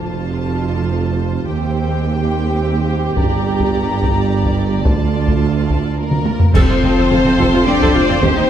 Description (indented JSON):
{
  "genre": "cinematic, epic orchestral film score",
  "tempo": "107 BPM",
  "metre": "3/4",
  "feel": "straight",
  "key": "unclear",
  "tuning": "A4 = 440 Hz",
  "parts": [
    { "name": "warm symphonic violin section", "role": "melody", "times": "0.0-8.5 s", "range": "Bb4 to Bb5", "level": "-25 LUFS", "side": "left 4 dB", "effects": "none" },
    { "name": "warm symphonic violin section", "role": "second line", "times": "0.0-8.5 s", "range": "F4 to D5", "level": "-28 LUFS", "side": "left 2 dB", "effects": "none" },
    { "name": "clear symphonic viola section", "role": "accompaniment", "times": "0.0-8.5 s", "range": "C4 to C5", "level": "-22 LUFS", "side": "right 1 dB", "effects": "none" },
    { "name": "mellow French horn section", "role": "sustained chords", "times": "0.0-8.5 s", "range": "G3 to F4", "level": "-22 LUFS", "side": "left 2 dB", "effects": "none" },
    { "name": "dark tuba", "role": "bass", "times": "0.0-8.3 s", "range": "F1 to Eb2", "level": "-21 LUFS", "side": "right 4 dB", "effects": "none" },
    { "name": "rich studio double bass section", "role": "bass", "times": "0.0-8.3 s", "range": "F1 to Eb2", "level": "-22 LUFS", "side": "right 4 dB", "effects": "none" },
    { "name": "warm symphonic cello section", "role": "bass", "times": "0.0-8.4 s", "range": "D2 to G2", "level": "-23 LUFS", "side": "right 3 dB", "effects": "none" },
    { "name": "taiko ensemble", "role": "drums", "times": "3.2-8.5 s", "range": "none", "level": "-18 LUFS", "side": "equal", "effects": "none" },
    { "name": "warm symphonic string section", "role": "sustained chords", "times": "6.5-8.5 s", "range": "C4 to G5", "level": "-24 LUFS", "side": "right 2 dB", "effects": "none" },
    { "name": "clash cymbals and concert bass drum", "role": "percussion", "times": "6.5-7.6 s", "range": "none", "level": "-22 LUFS", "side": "equal", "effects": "none" },
    { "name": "dark trombone section", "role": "sustained chords", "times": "6.6-8.5 s", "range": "F3 to C4", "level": "-27 LUFS", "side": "right 2 dB", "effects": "none" }
  ],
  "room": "moderate concert hall reverb, RT60 2.0 s",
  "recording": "dark, warm production",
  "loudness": "-13 LUFS",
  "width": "side -10 dB against mid",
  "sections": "0.0-6.5 A section; 6.5-8.5 B section",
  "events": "drum fill 6.1-6.5; band accent 6.5-7.1",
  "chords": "0.0 F; 1.5 Cm/Eb; 3.2 Gm; 4.9 Dm; 6.5 F"
}